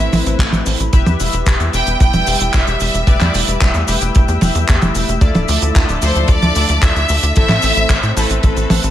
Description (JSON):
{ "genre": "italo disco", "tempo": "112 BPM", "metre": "4/4", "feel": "straight", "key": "unclear", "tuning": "A4 = 440 Hz", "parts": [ { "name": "bright symphonic violin section", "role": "melody", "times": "0.0-8.9 s", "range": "A4 to G5", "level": "-19 LUFS", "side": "equal", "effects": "tape echo" }, { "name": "dark studio string section", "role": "sustained chords", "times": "0.0-8.9 s", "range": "F3 to E5", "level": "-23 LUFS", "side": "left 1 dB", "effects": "none" }, { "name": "chorused polysynth", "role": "stabs", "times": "0.0-8.9 s", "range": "A3 to G5", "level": "-23 LUFS", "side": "left 4 dB", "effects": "tape echo" }, { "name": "tight sequencer bass", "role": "bass", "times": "0.0-8.9 s", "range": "D1 to A2", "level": "-18 LUFS", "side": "equal", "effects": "none" }, { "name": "damped 70s drum kit", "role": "drums", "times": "0.0-8.9 s", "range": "cabasa, handclaps, hi-hat, toms", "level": "-18 LUFS", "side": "right 1 dB", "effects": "small room ambience" }, { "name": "kick drum", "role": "drums", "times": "0.4-8.5 s", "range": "none", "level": "-14 LUFS", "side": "equal", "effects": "small room ambience" } ], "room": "studio reverb", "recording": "faint mains hum", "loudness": "-12 LUFS", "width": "side -12 dB against mid", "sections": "0.0-8.9 A section", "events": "none", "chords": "0.0 Am; 0.9 Em; 5.2 Dmadd9; 7.4 Am" }